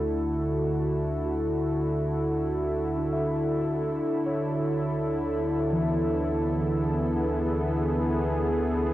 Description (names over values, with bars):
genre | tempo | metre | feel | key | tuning
ambient | free time | none | none | unclear | A4 = 440 Hz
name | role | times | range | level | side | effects
warm analog pad | sustained chords | 0.0-8.9 s | D3 to A4 | -25 LUFS | equal | chorus, cassette tape
warm sub bass | bass | 0.0-8.9 s | D2 | -35 LUFS | equal | none
muted felt-like synth keys | arpeggios | 1.2-8.9 s | E3 to E5 | -34 LUFS | equal | chorus, cassette tape, tape echo
room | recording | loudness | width
wet lush hall reverb, RT60 2.9 s | home recording on cassette | -24 LUFS | side -14 dB against mid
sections
0.0-8.9 A section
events
filter sweep on analog synth pad 0.0-8.9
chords
0.0 D; 4.1 C#m7/D